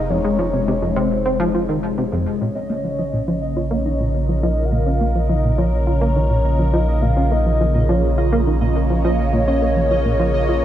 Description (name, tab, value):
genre	ambient, sequencer-driven space music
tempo	104 BPM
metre	4/4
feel	straight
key	Bb minor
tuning	A4 = 440 Hz
part	soft octave-layered synth lead	melody	0.0-10.6 s	C5 to Gb5	-24 LUFS	left 1 dB	chorus, tremolo, tape echo
part	phased analog pad	sustained chords	0.0-10.6 s	C3 to Db5	-23 LUFS	equal	phaser, chorus
part	warm sub bass	bass	0.0-10.6 s	F1 to Bb1	-21 LUFS	equal	none
part	plucky analog bass	riff	0.1-10.6 s	F2 to F4	-22 LUFS	right 1 dB	lush chorus, tape echo
part	pulsing gated texture	texture	2.4-10.6 s	Eb5	-30 LUFS	right 2 dB	chorus, built-in reverb
room	moderate scoring stage reverb, RT60 1.9 s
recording	none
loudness	-16 LUFS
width	side -11 dB against mid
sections	0.0-2.4 A section; 2.4-10.6 B section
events	filter sweep on analog synth bass 2.4-10.6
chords	0.0 Fm; 2.4 Bbm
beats	| 0.10 0.68 1.25 1.83 | 2.41 2.98 3.56 4.14 | 4.71 5.29 5.87 6.45 | 7.02 7.60 8.18 8.75 | 9.33 9.91 10.48